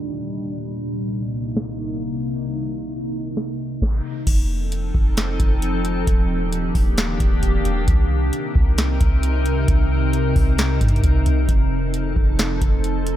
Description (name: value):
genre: hip hop, atmospheric cloud-rap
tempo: 133 BPM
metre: 4/4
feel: half-time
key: C dorian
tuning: A4 = 440 Hz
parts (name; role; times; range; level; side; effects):
- glassy FM pad; sustained chords; 0.0-13.2 s; C2 to Bb4; -24 LUFS; left 1 dB; ensemble chorus, built-in reverb, sidechain pumping
- booming analog drum machine; drums; 1.6-13.2 s; crash cymbal, hi-hat, kick drum, snare drum; -19 LUFS; equal; none
- soft 808-style bass; bass; 4.3-13.2 s; Eb1 to G2; -21 LUFS; equal; none
room: little or no reverb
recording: low-pass filter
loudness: -18 LUFS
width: side -12 dB against mid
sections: 0.0-4.3 A section; 4.3-13.2 B section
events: filter sweep 0.0-4.3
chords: 0.0 Ebmaj7; 0.7 Cm7; 4.3 F7; 6.1 Ebmaj7; 7.9 Cm7; 11.5 F7